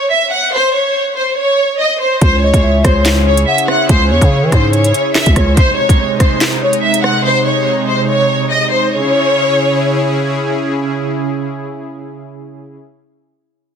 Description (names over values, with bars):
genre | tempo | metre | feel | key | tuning
hip hop, drill | 143 BPM | 4/4 | half-time | C# harmonic minor | A4 = 440 Hz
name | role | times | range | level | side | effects
warm studio violin section | melody | 0.0-10.1 s | B#4 to F#5 | -14 LUFS | equal | digital delay
warm analog pad | sustained chords | 2.2-12.8 s | B#2 to G#4 | -18 LUFS | right 2 dB | chorus, tremolo
growling 808-style bass | bass | 2.2-5.6 s | C#2 to E3 | -13 LUFS | equal | none
drill drum kit | drums | 2.2-7.1 s | handclaps, hi-hat, kick drum, rim click, snare drum | -13 LUFS | equal | none
hollow clarinet-like synth lead | second line | 2.4-3.9 s | C#5 to F#5 | -20 LUFS | left 5 dB | chorus, digital delay
room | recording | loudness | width
little or no reverb | dense, heavily limited modern master | -11 LUFS | side -7 dB against mid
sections
0.0-8.9 A section; 8.9-12.3 B section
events
none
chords
0.0 N.C.; 2.2 C#m; 5.6 G#; 8.9 C#m